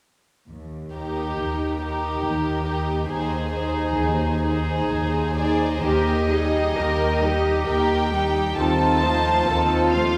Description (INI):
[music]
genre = classical, slow romantic movement for string orchestra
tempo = 67 BPM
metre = 3/4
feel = uneven beats, rubato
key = Eb major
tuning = A4 = 440 Hz
[part]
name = warm studio cello section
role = bass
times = 0.5-10.2 s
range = Eb2 to Bb4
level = -29 LUFS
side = equal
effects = none
[part]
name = warm studio double bass section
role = bass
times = 0.5-10.2 s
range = Eb2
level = -30 LUFS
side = equal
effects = none
[part]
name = dark studio violin section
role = melody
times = 0.9-10.2 s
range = Bb4 to A5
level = -29 LUFS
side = equal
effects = none
[part]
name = warm studio violin section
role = second line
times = 0.9-10.2 s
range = Eb4 to C5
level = -28 LUFS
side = equal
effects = none
[part]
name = dark studio viola section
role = accompaniment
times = 0.9-10.2 s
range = Eb3 to Eb4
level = -29 LUFS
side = equal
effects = none
[sound]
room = wet concert hall reverb, RT60 2.3 s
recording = recorded in a church or concert hall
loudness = -22 LUFS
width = mono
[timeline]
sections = 0.5-5.8 A section; 5.8-10.2 B section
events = none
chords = 0.5 Eb; 8.6 F7/Eb